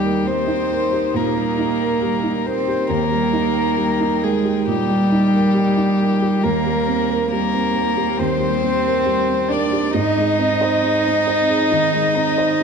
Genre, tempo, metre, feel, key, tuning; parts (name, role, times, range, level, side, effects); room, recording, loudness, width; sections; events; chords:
neoclassical piano and strings; 68 BPM; 4/4; rubato; A4 = 441 Hz
warm violin; melody; 0.0-12.6 s; G4 to Eb5; -22 LUFS; left 8 dB
warm cello; second line; 0.0-12.6 s; G3 to Eb4; -20 LUFS; right 3 dB
dark upright piano; accompaniment; 0.0-12.6 s; Eb2 to C5; -22 LUFS; right 3 dB
warm chamber string section; sustained chords; 0.0-12.6 s; Eb3 to G5; -29 LUFS; left 4 dB
moderate concert hall reverb, RT60 2.3 s; dark, warm production; -16 LUFS; side -6 dB against mid
0.0-12.6 A section
0.0 Eb; 6.4 Cm7/Eb; 9.9 Ab